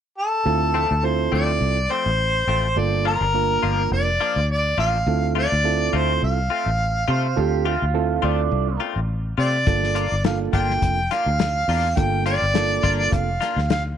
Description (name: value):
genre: straight-eighth soul blues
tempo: 104 BPM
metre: 4/4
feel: swing 55% on 16ths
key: D minor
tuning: A4 = 440 Hz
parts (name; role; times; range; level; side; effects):
- mellow harmonica; melody; 0.2-13.8 s; A4 to G5; -22 LUFS; equal; none
- overdriven reed electric piano; accompaniment; 0.5-13.3 s; Bb3 to Bb4; -26 LUFS; right 15 dB; none
- fingered electric bass; bass; 0.5-13.9 s; F1 to C3; -23 LUFS; left 1 dB; none
- direct-recorded clean electric guitar; stabs; 0.7-13.6 s; F3 to F4; -29 LUFS; left 13 dB; analog chorus
- electric guitar through a small old amp; second line; 7.1-8.8 s; D4 to C5; -26 LUFS; right 10 dB; none
- warm soul drum kit; drums; 9.7-13.8 s; hi-hat, kick drum, snare drum; -24 LUFS; left 4 dB; none
room: light reverb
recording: 1960s-style stereo with parts hard left and right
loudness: -18 LUFS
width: side -9 dB against mid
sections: 0.5-14.0 A section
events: none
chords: 0.5 Dm7; 2.8 Gm7; 5.1 Dm7; 9.7 Gm7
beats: | 0.46 1.04 1.61 2.19 | 2.77 3.34 3.92 4.49 | 5.07 5.64 6.22 6.79 | 7.37 7.95 8.52 9.10 | 9.67 10.24 10.82 11.39 | 11.97 12.54 13.12 13.69